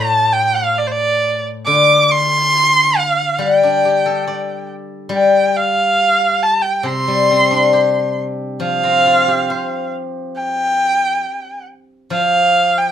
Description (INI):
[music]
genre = chinese traditional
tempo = 69 BPM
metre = 2/4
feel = rubato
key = C zhi mode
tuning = A4 = 442 Hz
[part]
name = clear erhu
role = melody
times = 0.0-12.9 s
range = C5 to D6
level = -14 LUFS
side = right 2 dB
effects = none
[part]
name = steel-string zither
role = accompaniment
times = 0.0-12.9 s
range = A2 to D5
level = -18 LUFS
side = left 4 dB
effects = none
[sound]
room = moderate studio ambience, RT60 0.5 s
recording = heard from further back in the room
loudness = -13 LUFS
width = side -9 dB against mid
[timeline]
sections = 0.0-8.6 A section; 8.6-12.9 B section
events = none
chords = none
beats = 0.79 | 1.67 2.55 | 3.42 4.28 | 5.12 5.98 | 6.85 7.73 | 8.62 9.50 | 10.38 11.25 | 12.11